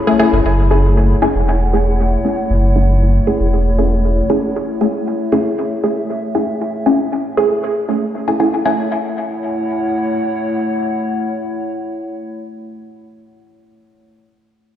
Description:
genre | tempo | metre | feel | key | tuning
dub techno | 117 BPM | 4/4 | straight | F# minor | A4 = 444 Hz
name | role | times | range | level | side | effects
warbly tape-like pad | sustained chords | 0.0-13.3 s | A3 to B5 | -20 LUFS | left 1 dB | chorus, built-in reverb
filtered dub chord stab | stabs | 0.0-13.3 s | A3 to G#4 | -17 LUFS | equal | phaser, dub echo
warm sub bass | bass | 0.3-4.2 s | E1 to F#1 | -14 LUFS | equal | none
room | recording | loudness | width
moderate lush hall reverb, RT60 2.2 s | played on a big sound system in a bare room, stone room reverb | -14 LUFS | side -10 dB against mid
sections
0.5-8.7 A section; 8.7-12.8 B section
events
filter sweep on synth stab 0.5-8.7; filter sweep on ambient pad 0.5-8.7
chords
0.5 F#m7

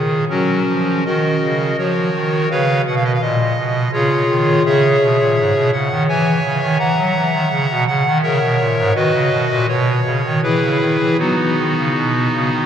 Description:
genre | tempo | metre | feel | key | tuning
classical, chorale-style piece for pipe organ | 83 BPM | 3/4 | uneven beats, rubato | B major from 4.7 s | A4 = 440 Hz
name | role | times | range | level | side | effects
pipe organ, clarinet reed | solo | 0.0-12.7 s | G#2 to A#5 | -14 LUFS | equal | none
room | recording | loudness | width
wet cathedral reverb, RT60 4.9 s | dark, warm production | -14 LUFS | side -9 dB against mid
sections
0.0-12.7 A section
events
none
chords
0.3 F#; 2.5 C#7; 4.7 C#m; 9.0 B; 10.4 C#m7; 11.2 B

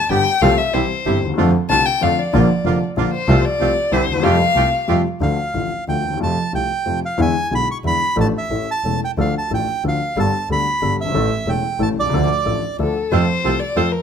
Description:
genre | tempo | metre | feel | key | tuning
tango | 184 BPM | 3/4 | rubato | F major, D minor from 5.2 s | A4 = 439 Hz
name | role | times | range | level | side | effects
warm violin | second line | 0.0-4.9, 12.8-14.0 s | A4 to A5 | -19 LUFS | left 5 dB | none
warm upright piano | accompaniment | 0.1-13.9 s | E1 to A4 | -20 LUFS | left 4 dB | none
bandoneon | stabs | 0.1-5.0, 13.1-13.9 s | G3 to A4 | -24 LUFS | right 10 dB | none
clear double bass | bass | 0.1-13.9 s | E1 to F2 | -21 LUFS | right 3 dB | none
bandoneon | melody | 5.2-12.8 s | D5 to C#6 | -21 LUFS | right 3 dB | none
room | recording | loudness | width
light reverb | close, detailed microphones | -16 LUFS | side -7 dB against mid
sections
0.0-5.2 A section; 5.2-13.1 B section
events
violin solo 0.0-5.2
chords
0.4 F/C; 0.7 C; 1.4 F6; 2.3 Bb; 3.3 F/C; 3.9 Cadd9; 4.2 Fadd9; 5.2 Dm; 6.2 F; 7.2 E7; 8.2 Dm/A; 8.5 A; 9.2 Dm; 10.2 Gadd9; 11.1 A; 12.1 Dm; 13.1 F

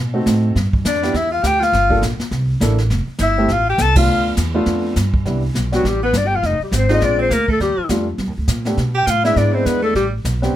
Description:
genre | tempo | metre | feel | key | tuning
jazz, small-group swing and bop | 204 BPM | 4/4 | swing 60% on 8ths | C major | A4 = 437 Hz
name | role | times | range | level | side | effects
upright bass | bass | 0.0-10.5 s | F1 to B2 | -19 LUFS | right 1 dB | none
warm upright piano | accompaniment | 0.1-10.6 s | G3 to A4 | -20 LUFS | right 1 dB | none
jazz brush drum kit | drums | 0.3-10.6 s | brushed snare drum, hi-hat, kick drum, ride cymbal, snare drum | -23 LUFS | equal | none
breathy clarinet | melody | 0.9-10.1 s | F#4 to A5 | -18 LUFS | left 4 dB | none
bright alto saxophone | second line | 0.9-10.1 s | F#3 to A4 | -23 LUFS | right 6 dB | none
room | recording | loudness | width
light reverb | close, detailed microphones | -15 LUFS | side -12 dB against mid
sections
0.0-5.2 A section; 5.2-10.6 B section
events
band accent 3.9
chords
0.0 B7b9; 0.6 Em7; 1.7 Gm9; 2.3 C13; 2.9 Fmaj7; 4.1 G7; 5.2 Cmaj7; 6.4 Fm; 7.0 Bb9; 7.6 Ebmaj9#11; 8.8 G13; 9.4 E7; 10.0 Am11

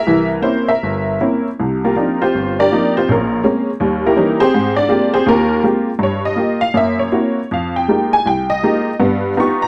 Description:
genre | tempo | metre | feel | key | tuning
solo jazz | 161 BPM | 4/4 | swing 65% on 8ths, rubato | C minor | A4 = 439 Hz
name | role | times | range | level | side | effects
honky-tonk upright piano | solo | 0.0-9.7 s | G1 to Db6 | -16 LUFS | equal | none
room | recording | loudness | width
moderate studio reverb, RT60 0.6 s | dark, warm production | -16 LUFS | mono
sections
0.0-1.6 A section; 1.6-9.7 B section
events
honky-tonk piano solo 1.6-9.7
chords
0.1 C7b9; 1.6 Cm11; 3.1 Bbm9; 3.8 Eb7b9; 4.5 Abmaj13; 6.0 Gm7b5; 6.7 F#7#11; 7.5 Fm11; 9.0 Gaug7

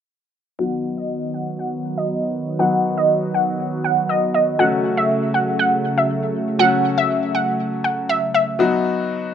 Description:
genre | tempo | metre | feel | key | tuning
pop | 120 BPM | 4/4 | straight | unclear | A4 = 440 Hz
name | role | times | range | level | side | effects
analog pluck | melody | 0.6-8.5 s | D#5 to F#5 | -19 LUFS | right 1 dB | chorus, low-pass filter, tape echo
bright grand piano | accompaniment | 0.6-9.3 s | F#3 to F#4 | -23 LUFS | left 5 dB | low-pass filter
warm analog pad | sustained chords | 0.6-8.6 s | C#3 to F#4 | -24 LUFS | right 2 dB | chorus, low-pass filter
room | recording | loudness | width
moderate studio reverb, RT60 0.6 s | rough home demo mix | -17 LUFS | side -8 dB against mid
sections
0.6-8.6 A section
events
filter sweep 0.6-8.6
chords
0.6 B; 4.6 F#m; 8.6 B

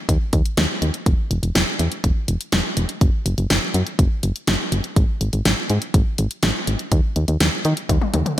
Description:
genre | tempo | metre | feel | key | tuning
synth-pop | 123 BPM | 4/4 | straight | unclear | A4 = 440 Hz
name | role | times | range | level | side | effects
solid FM bass | bass | 0.1-8.2 s | E1 to D#3 | -20 LUFS | equal | none
pop drum kit | drums | 0.1-8.4 s | hi-hat, kick drum, snare drum, toms | -19 LUFS | equal | gated reverb
room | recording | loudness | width
light reverb | bright 1980s-style digital production | -18 LUFS | side -13 dB against mid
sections
0.0-8.4 A section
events
drum fill 7.9-8.4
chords
none

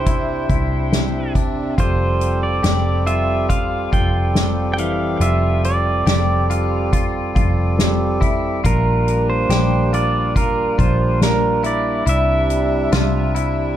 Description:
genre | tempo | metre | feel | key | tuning
dream pop | 70 BPM | 4/4 | straight | F major | A4 = 440 Hz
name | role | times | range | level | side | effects
pedal steel guitar | melody | 0.0-13.8 s | Bb4 to G5 | -22 LUFS | right 2 dB | tape echo
hand-pumped harmonium | sustained chords | 0.0-13.8 s | C3 to E5 | -23 LUFS | right 2 dB | none
clean electric guitar | arpeggios | 0.0-13.8 s | E3 to G4 | -26 LUFS | left 4 dB | analog chorus, tape echo
vintage muted fingered electric bass | bass | 0.0-13.8 s | F1 to C2 | -20 LUFS | equal | none
soft-mallet drum kit | drums | 0.1-13.6 s | hi-hat, kick drum, snare drum | -20 LUFS | left 1 dB | none
room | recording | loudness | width
light reverb, studio ambience | dark, warm production | -15 LUFS | side -11 dB against mid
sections
0.0-13.8 A section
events
none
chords
0.0 Cadd9; 1.8 Fadd9; 8.6 Bb; 12.1 Cadd9

